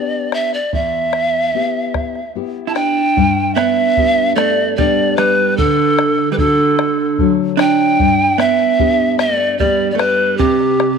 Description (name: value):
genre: andean folk, Andean ensemble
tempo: 74 BPM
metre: 3/4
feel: straight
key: unclear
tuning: A4 = 442 Hz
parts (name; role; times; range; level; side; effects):
- pan flute; melody; 0.0-11.0 s; G4 to A5; -15 LUFS; equal; none
- nylon-string guitar; accompaniment; 0.0-11.0 s; E2 to G4; -21 LUFS; left 11 dB; none
- bombo; percussion; 0.3-11.0 s; none; -21 LUFS; left 1 dB; none
- vintage hollow-body jazz guitar; second line; 2.7-11.0 s; C3 to E4; -17 LUFS; right 12 dB; none
room: moderate plate reverb, RT60 2.4 s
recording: 1960s-style stereo with parts hard left and right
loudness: -12 LUFS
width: side -6 dB against mid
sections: 0.0-3.2 A section; 3.2-11.0 B section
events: none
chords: 0.0 G; 0.7 Em; 3.2 G; 5.6 D; 8.0 G; 10.4 C5